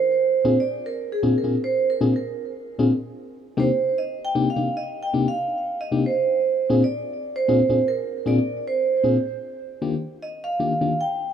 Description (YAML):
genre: reggae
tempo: 77 BPM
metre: 4/4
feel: swing 54% on 16ths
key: Eb major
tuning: A4 = 440 Hz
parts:
  - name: vibraphone with medium hard mallets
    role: melody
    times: 0.0-11.3 s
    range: Ab4 to G5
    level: -23 LUFS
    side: right 4 dB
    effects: tape echo
  - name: FM electric piano with tremolo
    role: accompaniment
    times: 0.4-10.9 s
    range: Bb2 to Ab4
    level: -22 LUFS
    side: left 2 dB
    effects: none
room: moderate plate reverb, RT60 3.6 s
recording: small room ambience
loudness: -20 LUFS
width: side -8 dB against mid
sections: 0.0-9.4 A section; 9.4-11.3 B section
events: vibraphone solo 0.0-9.4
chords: 0.1 Bb7; 3.2 Cm9; 6.3 Bb7; 9.4 Ebmaj7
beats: | 0.07 0.85 1.63 2.41 | 3.19 3.97 4.75 5.53 | 6.31 7.09 7.87 8.65 | 9.43 10.21 10.99